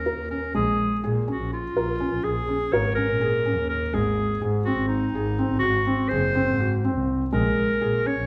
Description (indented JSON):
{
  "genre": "contemporary instrumental, chamber music in an uneven meter",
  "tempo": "248 BPM (eighths)",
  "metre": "7/8",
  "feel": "straight",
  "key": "unclear",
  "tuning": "A4 = 441 Hz",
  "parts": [
    { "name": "breathy clarinet", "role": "melody", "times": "0.0-8.3 s", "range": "Eb4 to Db5", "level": "-28 LUFS", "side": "equal", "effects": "none" },
    { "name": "warm double bass", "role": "bass", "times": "0.0-8.3 s", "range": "Gb1 to Bb2", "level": "-30 LUFS", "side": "equal", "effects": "none" },
    { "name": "felt-muted upright piano", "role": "arpeggios", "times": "0.1-8.3 s", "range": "Ab3 to Bb4", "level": "-28 LUFS", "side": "equal", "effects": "none" }
  ],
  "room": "wet recital hall reverb, RT60 1.4 s",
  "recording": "none",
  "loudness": "-24 LUFS",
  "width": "mono",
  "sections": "0.5-8.3 A section",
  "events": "none",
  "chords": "0.0 Eb7(no3); 0.5 Bbm7; 3.9 Ab7; 7.3 Bbm7"
}